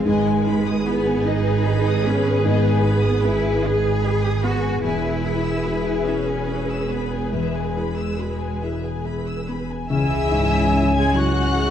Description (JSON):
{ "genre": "cinematic, emotional film score for orchestra", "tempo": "46-51 BPM (dotted quarters)", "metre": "6/8", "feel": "rubato", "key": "C# minor", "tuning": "A4 = 439 Hz", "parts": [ { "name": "rich studio violin section", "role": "second line", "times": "0.0-11.7 s", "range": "D#5 to E6", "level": "-31 LUFS", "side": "left 3 dB", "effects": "none" }, { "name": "felt-muted upright piano", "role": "accompaniment", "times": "0.0-11.7 s", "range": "C#2 to G#4", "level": "-27 LUFS", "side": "left 1 dB", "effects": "none" }, { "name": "rich studio viola section", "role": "accompaniment", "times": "0.0-11.7 s", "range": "E4 to B4", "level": "-26 LUFS", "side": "equal", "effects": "none" }, { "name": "concert harp", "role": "arpeggios", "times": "0.0-11.7 s", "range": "E2 to F5", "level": "-28 LUFS", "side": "left 7 dB", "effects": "none" }, { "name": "clear studio cello section", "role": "bass", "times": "0.0-11.7 s", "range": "E3 to G#4", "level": "-26 LUFS", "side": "right 2 dB", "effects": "none" }, { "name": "rich studio double bass section", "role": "bass", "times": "0.0-11.7 s", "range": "E1 to C#2", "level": "-24 LUFS", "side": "right 3 dB", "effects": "none" }, { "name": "rich studio violin section", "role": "melody", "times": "9.9-11.7 s", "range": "E6 to G#6", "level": "-27 LUFS", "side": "left 3 dB", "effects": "none" }, { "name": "silver concert flute", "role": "second line", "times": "9.9-11.7 s", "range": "G#5 to C#6", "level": "-25 LUFS", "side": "left 1 dB", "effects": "none" }, { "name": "dark French horn section", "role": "sustained chords", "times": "9.9-11.7 s", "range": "G#3 to C#4", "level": "-25 LUFS", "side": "left 2 dB", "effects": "none" } ], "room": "moderate scoring stage reverb, RT60 1.9 s", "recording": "dark, warm production", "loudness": "-18 LUFS", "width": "side -9 dB against mid", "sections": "0.0-9.9 A section; 9.9-11.7 B section", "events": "none", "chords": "0.1 G#m; 4.8 E; 9.9 C#m" }